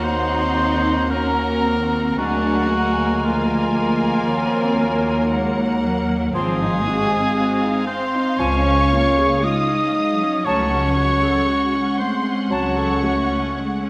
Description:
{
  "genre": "classical, slow romantic movement for symphony orchestra",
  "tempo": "58 BPM",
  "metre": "4/4",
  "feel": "rubato",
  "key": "unclear",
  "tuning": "A4 = 440 Hz",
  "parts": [
    { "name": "muted studio violin section", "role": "melody", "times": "0.0-13.9 s", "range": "F5 to Ab5", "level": "-33 LUFS", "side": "equal", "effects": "none" },
    { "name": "hollow concert flute", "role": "second line", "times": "0.0-13.0 s", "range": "Ab5 to C6", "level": "-31 LUFS", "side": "equal", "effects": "none" },
    { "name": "muted studio violin section", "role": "second line", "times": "0.0-13.9 s", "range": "F5 to Eb6", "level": "-32 LUFS", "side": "equal", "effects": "none" },
    { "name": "warm oboe", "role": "second line", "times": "0.0-13.9 s", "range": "F4 to Eb5", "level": "-26 LUFS", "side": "equal", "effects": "none" },
    { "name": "mellow bassoon", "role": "accompaniment", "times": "0.0-12.9 s", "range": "F3 to Ab3", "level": "-32 LUFS", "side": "equal", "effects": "none" },
    { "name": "muted studio viola section", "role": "accompaniment", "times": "0.0-13.9 s", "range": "Ab3 to Bb4", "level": "-30 LUFS", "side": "equal", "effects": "none" },
    { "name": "mellow French horn section", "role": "sustained chords", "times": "0.0-13.9 s", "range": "F3 to Eb4", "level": "-26 LUFS", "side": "equal", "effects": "none" },
    { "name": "muted studio cello section", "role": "bass", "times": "0.0-13.9 s", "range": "F3 to Eb4", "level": "-28 LUFS", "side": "equal", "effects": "none" },
    { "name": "muted studio double bass section", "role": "bass", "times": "0.0-13.4 s", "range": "Ab1 to Eb2", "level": "-26 LUFS", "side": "equal", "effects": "none" }
  ],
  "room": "wet scoring stage reverb, RT60 1.6 s",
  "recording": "none",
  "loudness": "-19 LUFS",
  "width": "mono",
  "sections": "0.0-13.9 A section",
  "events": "none",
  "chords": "0.0 Ebm7; 2.2 Bb7/D; 4.3 Ebm; 6.3 Ab6; 8.4 Db; 10.5 Gbm/Db"
}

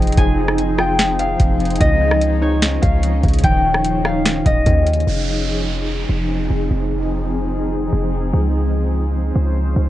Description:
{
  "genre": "hip hop, atmospheric cloud-rap",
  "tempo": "147 BPM",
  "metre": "4/4",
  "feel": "half-time",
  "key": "F minor",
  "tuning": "A4 = 438 Hz",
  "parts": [
    { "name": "concert harp", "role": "melody", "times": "0.0-6.2 s", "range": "Db5 to Ab5", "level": "-21 LUFS", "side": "left 2 dB", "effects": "ping-pong delay" },
    { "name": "granular cloud pad", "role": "sustained chords", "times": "0.0-9.9 s", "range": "F3 to Ab4", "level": "-22 LUFS", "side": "equal", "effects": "built-in reverb, sidechain pumping, low-pass filter" },
    { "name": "glassy wavetable pluck", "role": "arpeggios", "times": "0.0-5.1 s", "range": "Db3 to F4", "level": "-26 LUFS", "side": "equal", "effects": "chorus, ping-pong delay" },
    { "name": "warm 808-style bass", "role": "bass", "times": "0.0-9.9 s", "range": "Eb1 to Eb2", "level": "-19 LUFS", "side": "equal", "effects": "none" },
    { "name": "booming analog drum machine", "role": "drums", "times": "0.0-5.1 s", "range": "hi-hat, kick drum, rim click, snare drum", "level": "-17 LUFS", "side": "equal", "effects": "none" },
    { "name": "downlifter", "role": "sound effects", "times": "5.1-8.3 s", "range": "none", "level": "-30 LUFS", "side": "right 4 dB", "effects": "none" }
  ],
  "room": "little or no reverb",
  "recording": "worn, warbling old tape, cassette tape, warbly pitch drift, nothing above 10.7 kHz",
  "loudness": "-15 LUFS",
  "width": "side -14 dB against mid",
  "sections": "0.0-5.1 A section; 5.1-9.9 B section",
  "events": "filter sweep on ambient pad 5.1-9.9",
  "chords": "0.0 Fm7; 1.8 Dbadd9; 3.4 Eb9sus4; 5.1 Fm7; 8.3 Dbmaj9"
}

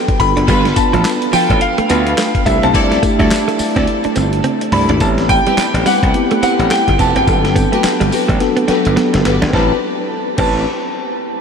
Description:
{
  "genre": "R&B, new jack swing",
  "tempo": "106 BPM",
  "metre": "4/4",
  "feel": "swing 60% on 16ths",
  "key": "A dorian",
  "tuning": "A4 = 440 Hz",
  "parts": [
    { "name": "clear grand piano", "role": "melody", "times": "0.0-10.6 s", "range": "E5 to B5", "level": "-18 LUFS", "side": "equal", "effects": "wide subtle chorus, ping-pong delay" },
    { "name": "mellow tine electric piano", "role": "accompaniment", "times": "0.0-10.6 s", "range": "F#3 to B4", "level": "-18 LUFS", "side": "left 1 dB", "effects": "medium stereo tremolo" },
    { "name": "direct-recorded clean electric guitar", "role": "riff", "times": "0.0-10.6 s", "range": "F3 to D4", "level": "-21 LUFS", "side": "right 4 dB", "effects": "lush chorus" },
    { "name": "dusty soul sampler-style drum kit", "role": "drums", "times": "0.1-10.5 s", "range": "crash cymbal, handclaps, hi-hat, kick drum, snare drum, tambourine, toms", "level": "-19 LUFS", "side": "equal", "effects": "none" },
    { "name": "slap bass", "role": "bass", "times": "0.2-10.6 s", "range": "F1 to D2", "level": "-17 LUFS", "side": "equal", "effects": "none" },
    { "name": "warm studio string section", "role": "stabs", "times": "0.5-10.6 s", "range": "C4 to D5", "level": "-22 LUFS", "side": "left 2 dB", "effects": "none" }
  ],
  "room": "wet huge ambient reverb, RT60 8.2 s",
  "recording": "dreamy mix soaked in reverb",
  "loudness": "-12 LUFS",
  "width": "side -6 dB against mid",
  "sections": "0.0-5.0 A section; 5.0-9.5 B section; 9.5-11.4 C section",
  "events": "drum fill 4.4-5.0, 8.4-9.5",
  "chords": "0.2 G9; 2.5 C69; 5.0 Am9; 7.3 Gmaj7; 9.5 Am9"
}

